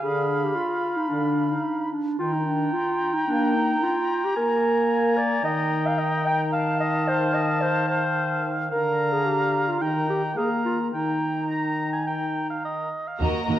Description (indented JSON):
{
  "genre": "quick classical-period movement for symphony orchestra",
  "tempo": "110 BPM",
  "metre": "4/4",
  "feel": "straight",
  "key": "Eb major",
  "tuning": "A4 = 440 Hz",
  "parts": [
    { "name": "clear oboe", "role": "second line", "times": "0.0-13.2 s", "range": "Eb5 to Bb5", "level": "-29 LUFS", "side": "right 1 dB", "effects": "none" },
    { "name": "dark clarinet", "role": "second line", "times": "0.0-12.6 s", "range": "D4 to G5", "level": "-25 LUFS", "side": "equal", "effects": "none" },
    { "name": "silver concert flute", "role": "second line", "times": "0.0-12.9 s", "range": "A5 to B5", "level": "-30 LUFS", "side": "equal", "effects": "none" },
    { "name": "mellow French horn section", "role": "sustained chords", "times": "0.0-12.9 s", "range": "D3 to Bb3", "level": "-28 LUFS", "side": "left 1 dB", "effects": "none" },
    { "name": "rich studio violin section", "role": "melody", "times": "13.2-13.6 s", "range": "Bb5", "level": "-30 LUFS", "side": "left 2 dB", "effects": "none" },
    { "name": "warm studio violin section", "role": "second line", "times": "13.2-13.6 s", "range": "Bb4 to Eb5", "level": "-29 LUFS", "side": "left 3 dB", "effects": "none" },
    { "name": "warm studio viola section", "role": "accompaniment", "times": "13.2-13.6 s", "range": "Bb3 to Gb4", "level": "-27 LUFS", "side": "right 4 dB", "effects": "none" },
    { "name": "warm studio cello section", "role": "bass", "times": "13.2-13.6 s", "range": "Eb2", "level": "-29 LUFS", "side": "right 2 dB", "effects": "none" },
    { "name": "warm studio double bass section", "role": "bass", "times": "13.2-13.6 s", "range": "Eb2", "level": "-26 LUFS", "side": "right 2 dB", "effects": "none" }
  ],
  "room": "moderate scoring stage reverb, RT60 1.6 s",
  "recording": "worn, warbling old tape, cassette tape, warbly pitch drift",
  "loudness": "-22 LUFS",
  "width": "side -12 dB against mid",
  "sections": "0.0-13.2 A section",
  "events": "none",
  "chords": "0.0 Dm6; 2.2 Eb; 4.4 Bb7; 5.4 Eb; 8.7 Bb/D; 9.8 Eb; 10.4 Bb5; 10.9 Eb"
}